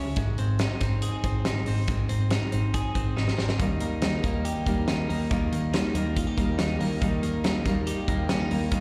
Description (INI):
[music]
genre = jangly indie pop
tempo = 140 BPM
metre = 4/4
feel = straight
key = Ab major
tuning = A4 = 440 Hz
[part]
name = twelve-string electric guitar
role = arpeggios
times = 0.0-8.8 s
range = Ab2 to Ab4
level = -33 LUFS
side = equal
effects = none
[part]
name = vintage muted picked electric bass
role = bass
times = 0.0-8.8 s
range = Ab1 to Eb2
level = -31 LUFS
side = equal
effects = none
[part]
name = big rock drum kit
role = drums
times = 0.2-8.8 s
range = hi-hat, kick drum, snare drum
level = -32 LUFS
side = equal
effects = none
[part]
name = fingerpicked steel-string acoustic guitar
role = accompaniment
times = 3.6-8.8 s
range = Eb3 to Eb4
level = -31 LUFS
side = equal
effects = none
[sound]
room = little or no reverb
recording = live gig heard through the venue's PA, recital hall reverb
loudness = -26 LUFS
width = mono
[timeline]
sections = 0.0-8.8 A section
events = drum fill 3.2-3.6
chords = 0.2 Ab; 3.6 Eb